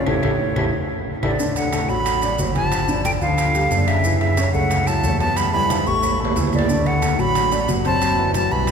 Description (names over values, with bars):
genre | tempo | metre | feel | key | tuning
Afro-Cuban jazz | 181 BPM | 4/4 | straight | D major | A4 = 440 Hz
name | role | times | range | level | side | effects
breathy bright silver concert flute | melody | 0.0-8.7 s | C#5 to C#6 | -22 LUFS | right 1 dB | none
breathy trombone | second line | 0.0-8.7 s | A2 to A3 | -27 LUFS | left 4 dB | none
warm concert grand piano | accompaniment | 0.0-8.7 s | D3 to E5 | -25 LUFS | equal | none
fingered electric bass | bass | 0.0-8.7 s | F#1 to F#2 | -23 LUFS | equal | none
claves | percussion | 0.1-8.7 s | none | -35 LUFS | left 1 dB | none
congas | percussion | 0.1-8.7 s | none | -28 LUFS | equal | none
timbales | percussion | 0.1-8.7 s | none | -28 LUFS | right 5 dB | none
maracas | percussion | 1.4-8.7 s | none | -33 LUFS | right 4 dB | none
room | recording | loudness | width
wet cathedral reverb, RT60 6.0 s | recorded in a church or concert hall | -17 LUFS | side -6 dB against mid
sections
0.0-1.4 A section; 1.4-8.7 B section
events
band accent 0.1-1.4; drum fill 0.6-1.4, 5.7-6.7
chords
0.1 A7; 1.4 D; 2.7 Gsus2; 4.0 F#m7; 5.4 Em; 6.0 A5; 6.7 D; 8.0 F#m7b5